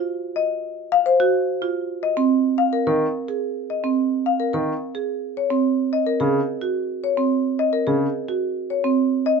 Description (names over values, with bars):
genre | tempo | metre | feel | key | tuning
classical, minimalist pattern music | 108 BPM | 3/4 | straight | unclear | A4 = 441 Hz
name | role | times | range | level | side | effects
marimba with medium mallets | arpeggios | 0.0-9.0 s | C4 to Bb4 | -22 LUFS | right 8 dB | none
marimba with medium mallets | melody | 0.4-9.4 s | Bb4 to F5 | -23 LUFS | left 7 dB | none
warm grand piano | accompaniment | 2.9-8.1 s | Db3 to Eb3 | -22 LUFS | left 1 dB | none
room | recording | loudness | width
little or no reverb | nothing above 7.9 kHz | -19 LUFS | side -5 dB against mid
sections
0.0-9.4 A section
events
none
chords
0.0 Ebmadd9 (rootless); 1.8 Fm7 (rootless); 5.1 Ab7sus4